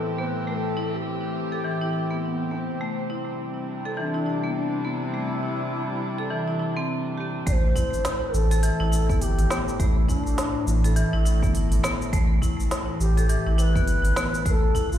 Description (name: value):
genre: organic downtempo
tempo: 103 BPM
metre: 4/4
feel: swing 59% on 16ths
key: A minor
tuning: A4 = 438 Hz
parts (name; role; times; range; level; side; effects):
- mellow bass bansuri; melody; 0.0-15.0 s; B3 to D5; -30 LUFS; left 1 dB; ping-pong delay
- dark chamber string section; sustained chords; 0.0-15.0 s; A2 to G4; -31 LUFS; equal; sidechain pumping, low-pass filter
- wind-like tuned noise texture; texture; 0.0-7.5 s; E3 to E6; -44 LUFS; right 2 dB; none
- marimba with hard mallets; arpeggios; 0.2-15.0 s; E3 to A4; -29 LUFS; left 2 dB; digital delay
- warm sub bass; bass; 7.5-15.0 s; G1 to A1; -22 LUFS; equal; sidechain pumping
- electronic kick drum; drums; 7.5-14.9 s; none; -25 LUFS; equal; none
- organic electronic drum kit; drums; 7.5-15.0 s; hi-hat, shaker, snare drum; -32 LUFS; right 1 dB; overdrive
room: light reverb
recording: played on a big sound system in a bare room, large studio reverb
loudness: -22 LUFS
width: side -11 dB against mid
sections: 0.0-7.5 A section; 7.5-15.0 B section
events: none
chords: 0.0 Em/A; 2.8 C; 7.5 Am7